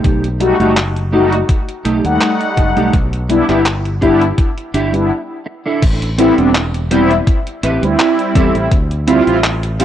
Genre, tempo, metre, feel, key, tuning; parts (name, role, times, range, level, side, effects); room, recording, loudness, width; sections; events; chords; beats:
vaporwave; 83 BPM; 4/4; swing 54% on 16ths; A minor; A4 = 440 Hz
mellow electric guitar; riff; 0.0-9.8 s; A3 to C5; -19 LUFS; right 3 dB; ensemble chorus, tape echo
fingered electric bass; bass; 0.0-9.8 s; E1 to E2; -18 LUFS; equal
detuned 8-bit digital drum machine; drums; 0.0-9.8 s; crash cymbal, handclaps, hi-hat; -21 LUFS; equal
electronic kick drum; drums; 0.0-8.9 s; -14 LUFS; equal
mellow synth brass; accompaniment; 0.4-9.8 s; G3 to F#5; -14 LUFS; left 1 dB; lush chorus, tape echo
light reverb, digital ambience; dry, gritty hardware recording, cassette tape; -11 LUFS; side -10 dB against mid
0.0-5.8 A section; 5.8-9.8 B section
break 5.1-5.8
0.0 B7b13; 2.9 Em7; 5.8 Am7; 8.7 Dm11
| 0.04 0.77 1.49 2.21 | 2.93 3.66 4.38 5.10 | 5.83 6.55 7.27 7.99 | 8.72 9.44